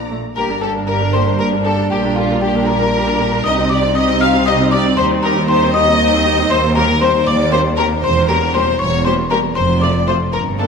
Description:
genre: cinematic, playful, whimsical film cue.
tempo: 78 BPM (dotted quarters).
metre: 6/8.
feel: straight.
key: G minor.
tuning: A4 = 441 Hz.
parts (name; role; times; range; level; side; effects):
warm symphonic violin section; melody; 0.0-10.7 s; F4 to Bb5; -20 LUFS; left 3 dB; none.
rich chamber violin section; second line; 0.0-10.7 s; F4 to F5; -20 LUFS; left 2 dB; none.
rich chamber cello section; bass; 0.0-10.7 s; Eb2 to C3; -20 LUFS; right 2 dB; none.
warm symphonic double bass section; bass; 0.0-10.7 s; E1 to Eb2; -21 LUFS; right 3 dB; none.
warm studio viola section; accompaniment; 0.1-10.7 s; A3 to Bb4; -22 LUFS; right 2 dB; none.
xylophone with rubber mallets; melody; 0.4-10.7 s; F5 to F6; -21 LUFS; left 4 dB; none.
mellow French horn section; sustained chords; 0.4-10.7 s; G3 to D4; -22 LUFS; left 1 dB; none.
room: wet concert hall reverb, RT60 2.1 s.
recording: minimal, uncompressed stereo recording.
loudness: -12 LUFS.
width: side -6 dB against mid.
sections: 0.4-10.7 A section.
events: none.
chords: 0.4 Gm; 1.9 Gm/Bb; 3.4 Cm; 5.0 Cm/Eb; 6.5 Cm7/Eb; 8.0 Edim7; 9.6 F.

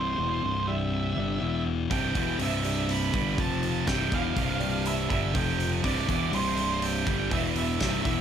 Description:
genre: quiet-loud alternative rock.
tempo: 122 BPM.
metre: 4/4.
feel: straight.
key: C major.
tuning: A4 = 440 Hz.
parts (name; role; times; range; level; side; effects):
octave-fuzz lead guitar; melody; 0.0-8.2 s; C5 to B5; -32 LUFS; right 5 dB; distortion.
fingerpicked plugged-in steel-string acoustic guitar; arpeggios; 0.0-8.2 s; C2 to G3; -37 LUFS; right 4 dB; none.
thick fuzz guitar; riff; 0.0-8.2 s; C2 to G3; -30 LUFS; left 7 dB; distortion.
picked electric bass; bass; 0.0-8.2 s; C1 to G1; -33 LUFS; right 1 dB; none.
heavy high-gain guitar; riff; 1.9-8.2 s; C2 to G3; -31 LUFS; right 14 dB; distortion.
big rock drum kit; drums; 1.9-8.2 s; hi-hat, kick drum, snare drum; -32 LUFS; equal; none.
room: light reverb, small room ambience.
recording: none.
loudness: -25 LUFS.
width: side -8 dB against mid.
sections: 0.0-8.2 A section.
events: half time 0.0-8.2.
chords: 0.0 C; 1.4 E5; 1.9 C; 3.4 F5; 3.9 C; 5.3 F5; 5.8 C; 7.3 E5.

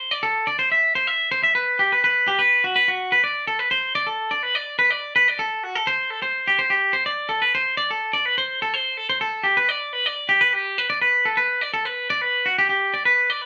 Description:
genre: rock.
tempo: 125 BPM.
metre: 4/4.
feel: straight.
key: G major.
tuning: A4 = 439 Hz.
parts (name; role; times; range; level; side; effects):
twangy electric guitar; solo; 0.0-13.5 s; F#4 to E5; -20 LUFS; equal; none.
room: moderate studio reverb, RT60 0.6 s.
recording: band playing live in one room.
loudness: -20 LUFS.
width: mono.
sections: 0.0-9.7 A section; 9.7-13.5 B section.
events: none.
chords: none.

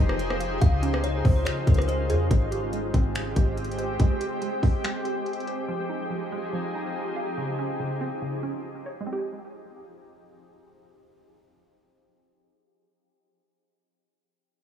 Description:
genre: hip hop, atmospheric cloud-rap.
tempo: 142 BPM.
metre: 4/4.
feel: half-time.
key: Ab major.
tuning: A4 = 441 Hz.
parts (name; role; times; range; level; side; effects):
kalimba; melody; 0.0-2.3 s; Ab4 to F5; -33 LUFS; equal; digital delay.
shimmering ambient pad; sustained chords; 0.0-7.4 s; Db3 to C5; -31 LUFS; equal; chorus, built-in reverb, sidechain pumping.
hollow square pluck; arpeggios; 0.0-12.4 s; Db3 to F5; -34 LUFS; right 3 dB; chorus, digital delay.
clean 808-style bass; bass; 0.0-4.0 s; F1 to F2; -26 LUFS; left 1 dB; none.
trap drum kit; drums; 0.1-5.6 s; finger snaps, hi-hat, kick drum, rim click; -23 LUFS; equal; none.
room: light reverb.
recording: low-pass filter.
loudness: -24 LUFS.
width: side -9 dB against mid.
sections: 0.0-2.3 A section; 2.3-9.1 B section; 9.1-12.4 C section.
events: none.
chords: 0.0 Fm7; 0.6 Dbmaj7; 2.3 Abmaj7; 5.7 Fm7; 7.4 N.C.; 9.1 Abmaj7.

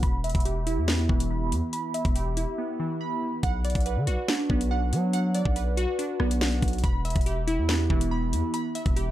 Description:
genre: hip hop, drill.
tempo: 141 BPM.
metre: 4/4.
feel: half-time.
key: unclear.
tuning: A4 = 435 Hz.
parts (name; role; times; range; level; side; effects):
glassy digital keys; arpeggios; 0.0-9.1 s; E3 to B5; -29 LUFS; right 2 dB; chorus, low-pass filter, tape echo.
long sustained 808-style bass; bass; 0.0-9.1 s; E1 to F#3; -27 LUFS; equal; none.
drill drum kit; drums; 0.0-9.1 s; hi-hat, kick drum, rim click, snare drum; -27 LUFS; equal; none.
room: digital ambience.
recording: dark, warm production.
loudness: -24 LUFS.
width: side -13 dB against mid.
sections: 0.0-9.1 A section.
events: filter sweep on synth keys 0.0-3.4; break 2.6-3.4.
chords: 0.0 Em; 3.4 Bm; 6.8 Em.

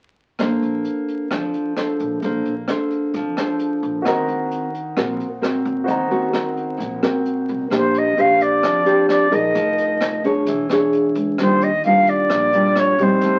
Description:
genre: bossa nova.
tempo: 131 BPM.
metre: 4/4.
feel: straight.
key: Bb major.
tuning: A4 = 440 Hz.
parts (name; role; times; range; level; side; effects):
nylon-string guitar; accompaniment; 0.4-13.4 s; A2 to Db5; -22 LUFS; equal; none.
upright bass; bass; 0.4-13.4 s; E1 to F2; -35 LUFS; equal; none.
jazz brush drum kit; drums; 0.4-13.3 s; hi-hat, kick drum, rim click; -30 LUFS; equal; none.
warm baby grand piano; accompaniment; 4.0-7.7 s; Gb4 to Bb5; -28 LUFS; equal; none.
silver concert flute; melody; 7.8-13.4 s; C5 to F5; -19 LUFS; equal; none.
room: wet small room reverb, RT60 0.5 s.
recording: very old 78 rpm record, vinyl crackle.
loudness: -19 LUFS.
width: mono.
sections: 0.4-7.7 A section; 7.7-13.4 B section.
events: none.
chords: 0.4 Bbmaj9; 4.1 Ebm6; 7.7 Bb69; 9.6 Fm7; 10.5 E6; 11.4 Ebmaj9.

